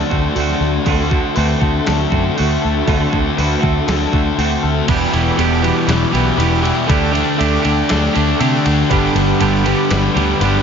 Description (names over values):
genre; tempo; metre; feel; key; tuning
rock, shoegaze and dream pop; 119 BPM; 4/4; straight; unclear; A4 = 440 Hz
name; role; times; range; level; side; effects
warbly tape-like pad; sustained chords; 0.0-10.6 s; F#4 to D6; -26 LUFS; right 2 dB; chorus, built-in reverb
direct-recorded clean electric guitar; arpeggios; 0.0-10.6 s; F#4 to B4; -26 LUFS; left 7 dB; ensemble chorus, analog delay
crunchy overdriven guitar; riff; 0.0-10.6 s; E2 to G4; -20 LUFS; right 12 dB; reverse reverb
thick fuzz guitar; riff; 0.0-10.6 s; E2 to D4; -19 LUFS; left 9 dB; distortion, analog chorus
vintage muted picked electric bass; bass; 0.1-10.6 s; E1 to C3; -19 LUFS; equal; none
clean 12-bit digital drum machine; drums; 0.1-10.6 s; crash cymbal, hi-hat, kick drum, ride cymbal, snare drum; -22 LUFS; right 1 dB; overdrive
overdriven electric guitar; riff; 4.9-10.6 s; E2 to D4; -20 LUFS; right 1 dB; none
room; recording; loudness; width
light reverb, digital ambience; nothing above 7.4 kHz; -13 LUFS; side -7 dB against mid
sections
0.0-4.9 A section; 4.9-10.6 B section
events
kick and snare drop out 4.4-4.9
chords
0.0 D7; 4.9 Em7; 6.9 Dsus4; 8.9 Gmaj7